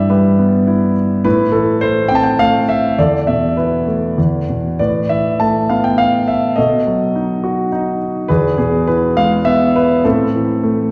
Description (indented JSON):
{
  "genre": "classical, lyrical solo piano",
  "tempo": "103 BPM",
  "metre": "3/4",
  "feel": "rubato",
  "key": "A minor",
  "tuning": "A4 = 443 Hz",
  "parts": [
    { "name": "warm concert grand piano", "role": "solo", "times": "0.0-10.9 s", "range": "E2 to A5", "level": "-15 LUFS", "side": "equal", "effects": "none" }
  ],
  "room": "wet recital hall reverb, RT60 1.8 s",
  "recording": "heard from further back in the room",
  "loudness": "-15 LUFS",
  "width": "mono",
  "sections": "0.0-10.9 A section",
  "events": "none",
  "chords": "0.0 Em/G; 1.3 Am; 3.0 Esus4; 4.2 E5; 4.8 Asus2; 6.6 B7; 8.3 E; 10.1 Am",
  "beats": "0.10 0.68 | 1.25 1.82 2.40 | 2.98 3.57 4.18 | 4.79 5.40 5.99 | 6.57 7.15 7.72 | 8.29 8.87 9.46 | 10.05 10.64"
}